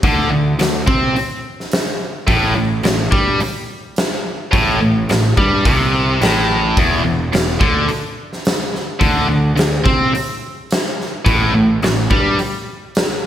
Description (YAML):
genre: blues rock power trio and southern rock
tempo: 107 BPM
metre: 4/4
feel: straight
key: unclear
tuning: A4 = 441 Hz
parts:
  - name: tight distorted guitar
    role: riff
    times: 0.0-12.4 s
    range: E2 to C4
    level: -16 LUFS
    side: equal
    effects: distortion
  - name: fuzz picked electric bass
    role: bass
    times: 0.0-12.4 s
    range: E1 to C3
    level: -21 LUFS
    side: equal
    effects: overdrive
  - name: big rock drum kit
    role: drums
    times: 0.0-13.1 s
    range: hi-hat, kick drum, snare drum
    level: -18 LUFS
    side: equal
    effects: none
room: moderate lush hall reverb, RT60 2.0 s, small room ambience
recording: big arena sound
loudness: -14 LUFS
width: side -11 dB against mid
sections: 0.0-13.3 A section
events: none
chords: 0.0 Csus2/D; 2.3 Am7; 6.8 Dsus2/E; 9.0 Csus2/D; 11.3 A7(no3)